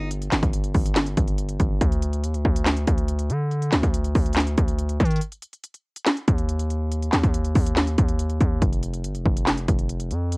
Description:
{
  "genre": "hip hop, trap",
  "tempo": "141 BPM",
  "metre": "4/4",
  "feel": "half-time",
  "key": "unclear",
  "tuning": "A4 = 440 Hz",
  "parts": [
    { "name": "distorted 808-style bass", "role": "bass", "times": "0.0-10.4 s", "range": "F1 to Eb3", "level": "-24 LUFS", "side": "equal", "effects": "distortion" },
    { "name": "techno drum kit", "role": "drums", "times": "0.1-10.4 s", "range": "handclaps, hi-hat, kick drum, snare drum", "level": "-22 LUFS", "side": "equal", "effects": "overdrive" }
  ],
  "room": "little or no reverb",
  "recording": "home recording on cassette",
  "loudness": "-20 LUFS",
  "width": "side -30 dB against mid",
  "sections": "0.0-10.4 A section",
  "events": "break 5.2-6.1",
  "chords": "none"
}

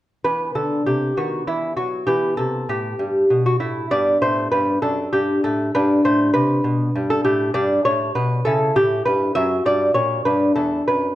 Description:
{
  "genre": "classical, baroque-style dance for lute",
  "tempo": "66 BPM (dotted quarters)",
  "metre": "6/8",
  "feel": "rubato",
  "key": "E minor",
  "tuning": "A4 = 439 Hz",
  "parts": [
    { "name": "lute", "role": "solo", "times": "0.2-11.2 s", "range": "E2 to E5", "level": "-17 LUFS", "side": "equal", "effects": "none" }
  ],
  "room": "moderate recital hall reverb, RT60 1.5 s",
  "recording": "dark, warm production",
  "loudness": "-17 LUFS",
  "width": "side -14 dB against mid",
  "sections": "0.3-11.2 A section",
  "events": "none",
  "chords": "0.3 E5; 1.2 B/D#; 2.1 Em; 3.9 G; 4.8 D/F#; 5.7 G; 8.5 C#dim; 9.4 F#; 10.3 G5"
}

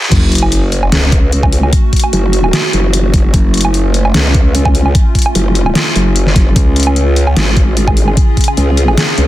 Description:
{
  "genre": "heavy wobble dubstep",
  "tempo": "149 BPM",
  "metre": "4/4",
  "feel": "swing 54% on 16ths, half-time",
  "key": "F# harmonic minor",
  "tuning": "A4 = 440 Hz",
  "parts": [
    { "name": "dubstep drum kit", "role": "drums", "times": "0.0-9.3 s", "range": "crash cymbal, hi-hat, snare drum, woodblock", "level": "-16 LUFS", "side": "equal", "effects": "high-pass filter on snare, high-pass filter on hats, high-pass filter on perc, high-pass filter on cymbals, high-pass filter on room" },
    { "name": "evolving wavetable pad", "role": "sustained chords", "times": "0.2-9.3 s", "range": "C#3 to G#4", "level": "-20 LUFS", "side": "right 1 dB", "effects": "chorus, built-in reverb, sidechain pumping" },
    { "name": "growl bass", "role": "bass", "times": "0.1-9.3 s", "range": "F#1 to C#2", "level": "-12 LUFS", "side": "equal", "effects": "chorus, overdrive" },
    { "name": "electronic kick drum", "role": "drums", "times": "0.1-8.5 s", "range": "none", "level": "-11 LUFS", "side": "equal", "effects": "overdrive" },
    { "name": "sub drop", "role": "sound effects", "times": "0.1-1.7 s", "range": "none", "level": "-18 LUFS", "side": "equal", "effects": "none" }
  ],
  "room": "little or no reverb",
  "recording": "dense, heavily limited modern master, high-pass filter",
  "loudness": "-9 LUFS",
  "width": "side -15 dB against mid",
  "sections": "0.1-9.3 A section",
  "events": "drop 0.1-9.3; impact 0.1-1.7",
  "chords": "0.1 F#m; 6.6 C#"
}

